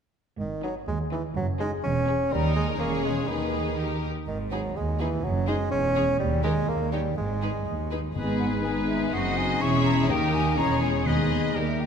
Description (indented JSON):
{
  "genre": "quick classical-period movement for symphony orchestra",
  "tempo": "124 BPM",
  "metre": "2/4",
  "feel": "straight",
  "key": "G# minor",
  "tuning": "A4 = 439 Hz",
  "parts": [
    { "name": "warm bassoon", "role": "accompaniment", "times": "0.4-11.8 s", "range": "D#3 to C#4", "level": "-30 LUFS", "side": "right 1 dB", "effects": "none" },
    { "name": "rich studio double bass section", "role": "bass", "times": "0.4-11.8 s", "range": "E1 to D#2", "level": "-30 LUFS", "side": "right 3 dB", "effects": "none" },
    { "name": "warm studio cello section", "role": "bass", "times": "0.4-11.8 s", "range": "D#2 to G#2", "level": "-31 LUFS", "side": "right 2 dB", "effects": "none" },
    { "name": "rich studio violin section", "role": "melody", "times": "0.6-11.8 s", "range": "G#4 to E5", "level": "-36 LUFS", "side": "left 5 dB", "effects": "none" },
    { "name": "warm studio violin section", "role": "second line", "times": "0.6-11.8 s", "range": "D#4 to B4", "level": "-36 LUFS", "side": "left 3 dB", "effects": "none" },
    { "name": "dark studio viola section", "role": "accompaniment", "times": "0.6-11.8 s", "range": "A#3 to D#4", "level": "-33 LUFS", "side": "left 2 dB", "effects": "none" },
    { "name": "clear oboe", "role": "second line", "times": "8.2-11.8 s", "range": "A#4 to D#5", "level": "-34 LUFS", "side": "right 1 dB", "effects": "none" },
    { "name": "mellow hollow silver concert flute", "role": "second line", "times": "8.2-11.9 s", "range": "D#5 to C#6", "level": "-31 LUFS", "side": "left 4 dB", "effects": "none" },
    { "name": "warm clarinet", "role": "second line", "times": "8.2-11.8 s", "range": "D#4 to E4", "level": "-34 LUFS", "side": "left 4 dB", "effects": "none" },
    { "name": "dark French horn section", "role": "sustained chords", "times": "8.2-11.8 s", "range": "G3 to D#4", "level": "-31 LUFS", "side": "left 6 dB", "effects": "none" },
    { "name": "timpani", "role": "percussion", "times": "8.2-8.8, 11.1-11.5 s", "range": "G#2 to D#3", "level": "-32 LUFS", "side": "equal", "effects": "none" }
  ],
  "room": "wet concert hall reverb, RT60 2.1 s",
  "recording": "none",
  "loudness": "-23 LUFS",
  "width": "side -7 dB against mid",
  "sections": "0.4-8.2 A section; 8.2-11.9 B section",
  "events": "none",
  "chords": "0.4 G#m; 1.4 G#7/F#; 1.8 C#m/E; 2.3 D#; 2.8 C#m/E; 3.3 G#m/D#; 4.3 G#5; 5.2 G#7(no3)/F#; 5.7 C#m/E; 6.2 D#; 7.2 G#5; 8.2 G#m; 9.1 G#7/F#; 9.6 C#m/E; 10.1 D#; 10.6 C#m/E; 11.1 G#m/D#"
}